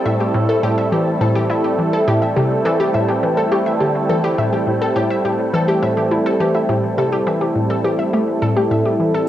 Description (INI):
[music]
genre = ambient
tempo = 104 BPM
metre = 4/4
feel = straight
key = A minor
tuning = A4 = 440 Hz
[part]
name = sweeping resonant pad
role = sustained chords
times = 0.0-9.3 s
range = G3 to A4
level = -18 LUFS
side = right 1 dB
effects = chorus, cassette tape
[part]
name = wide unison pluck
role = arpeggios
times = 0.0-9.3 s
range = G4 to E5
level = -22 LUFS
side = left 2 dB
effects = auto-pan, cassette tape, analog delay
[part]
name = hollow square pluck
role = riff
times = 0.0-9.1 s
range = A2 to E4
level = -21 LUFS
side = equal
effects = chorus, cassette tape, analog delay
[part]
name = wind-like tuned noise texture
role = texture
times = 0.0-9.3 s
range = E4 to G4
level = -29 LUFS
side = right 3 dB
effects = built-in reverb, cassette tape
[sound]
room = wet studio reverb, RT60 0.7 s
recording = home recording on cassette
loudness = -15 LUFS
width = side -12 dB against mid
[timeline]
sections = 0.0-9.3 A section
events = none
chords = 0.0 Am7